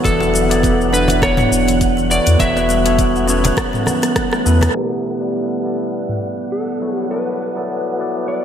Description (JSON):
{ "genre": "organic downtempo", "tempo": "102 BPM", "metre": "4/4", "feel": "swing 56% on 16ths", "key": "unclear", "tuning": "A4 = 440 Hz", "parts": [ { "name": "electric slide guitar", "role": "melody", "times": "0.0-8.4 s", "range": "G4 to E5", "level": "-21 LUFS", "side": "left 1 dB", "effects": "ping-pong delay" }, { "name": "barky tine electric piano", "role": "accompaniment", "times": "0.0-8.4 s", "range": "F#3 to D5", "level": "-21 LUFS", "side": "left 2 dB", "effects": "lush chorus, sidechain pumping, ping-pong delay" }, { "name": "kalimba", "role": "arpeggios", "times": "0.0-4.7 s", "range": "B2 to D4", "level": "-21 LUFS", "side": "right 2 dB", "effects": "ping-pong delay" }, { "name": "warm sub bass", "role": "bass", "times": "0.0-4.7 s", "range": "E1 to E2", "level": "-18 LUFS", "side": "equal", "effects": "tube saturation" }, { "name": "electronic kick drum", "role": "drums", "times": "0.0-4.3 s", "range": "none", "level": "-21 LUFS", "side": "equal", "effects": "none" }, { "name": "wind-like tuned noise texture", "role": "texture", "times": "0.0-8.4 s", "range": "F#5", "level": "-27 LUFS", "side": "right 2 dB", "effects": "built-in reverb, ensemble chorus" }, { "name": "afro-pop drum kit", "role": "drums", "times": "0.1-6.2 s", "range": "cabasa, hi-hat, rim click, toms", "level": "-22 LUFS", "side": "left 1 dB", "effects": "low-pass filter on hats, low-pass filter on perc, low-pass filter on snare, low-pass filter on toms" }, { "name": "cajon", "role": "percussion", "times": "0.2-4.7 s", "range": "none", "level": "-26 LUFS", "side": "left 2 dB", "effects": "none" } ], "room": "wet lush hall reverb, RT60 2.0 s", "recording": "dreamy mix soaked in reverb, low-pass filter", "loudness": "-14 LUFS", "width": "side -9 dB against mid", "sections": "0.0-4.8 A section; 4.8-8.4 B section", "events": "drum fill 3.9-4.8; band accent 4.6", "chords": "0.0 Dmaj7/E; 2.4 A9/E; 4.8 Em9" }